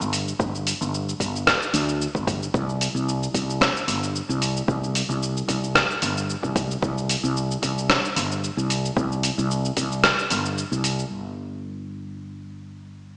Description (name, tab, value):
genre	organic downtempo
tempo	112 BPM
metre	4/4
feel	swing 54% on 16ths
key	unclear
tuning	A4 = 440 Hz
part	mellow fretless electric bass	bass	0.0-13.2 s	G1 to D2	-25 LUFS	equal	sidechain pumping
part	dusty soul sampler-style drum kit	drums	0.0-11.1 s	cabasa, hi-hat, rim click	-23 LUFS	equal	overdrive, low-pass filter on perc, low-pass filter on hats, low-pass filter on snare
part	electronic kick drum	drums	0.4-10.2 s	none	-26 LUFS	equal	none
room	moderate lush hall reverb, RT60 2.0 s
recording	played on a big sound system in a bare room, stone room reverb, small speaker sound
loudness	-21 LUFS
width	side -36 dB against mid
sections	0.0-11.1 A section; 11.1-13.2 B section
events	break 10.6-11.1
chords	none